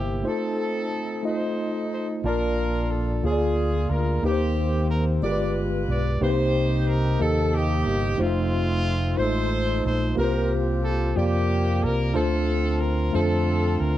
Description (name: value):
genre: slow gospel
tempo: 61 BPM (dotted quarters)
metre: 6/8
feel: straight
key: Bb major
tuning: A4 = 440 Hz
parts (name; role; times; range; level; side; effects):
- clear horn section; melody; 0.0-14.0 s; A3 to D5; -28 LUFS; right 1 dB; none
- tine electric piano; accompaniment; 0.0-14.0 s; G2 to A5; -25 LUFS; left 1 dB; medium stereo tremolo
- fingered electric bass; bass; 0.0-14.0 s; F1 to F2; -25 LUFS; equal; none
room: studio reverb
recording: dry, close 1970s-style studio recording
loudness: -21 LUFS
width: side -13 dB against mid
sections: 0.0-2.2 A section; 2.2-14.0 B section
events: none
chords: 0.3 F7; 2.2 Bbmaj7; 3.2 Bb7/D; 4.2 Eb6; 5.2 G7b9; 6.2 Cm7; 8.2 F7; 10.2 C7sus4; 12.2 Dm7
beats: | 0.25 1.25 | 2.24 3.24 | 4.23 5.22 | 6.21 7.21 | 8.20 9.19 | 10.17 11.16 | 12.15 13.14